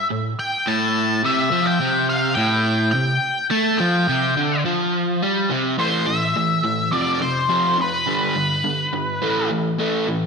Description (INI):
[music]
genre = rock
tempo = 105 BPM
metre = 4/4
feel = straight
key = A minor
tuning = A4 = 440 Hz
[part]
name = octave-fuzz lead guitar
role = melody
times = 0.0-9.5 s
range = B4 to A5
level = -21 LUFS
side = left 1 dB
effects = wah, distortion, slapback echo
[part]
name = overdriven semi-hollow guitar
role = riff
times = 0.1-10.3 s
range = F2 to A3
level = -20 LUFS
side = equal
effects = slapback echo
[sound]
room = wet lush hall reverb, RT60 1.6 s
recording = big arena sound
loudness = -18 LUFS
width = side -5 dB against mid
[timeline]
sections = 0.0-5.8 A section; 5.8-10.3 B section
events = none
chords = 0.0 A5; 1.2 C5; 5.8 A5; 6.9 F5; 8.1 G; 9.2 A5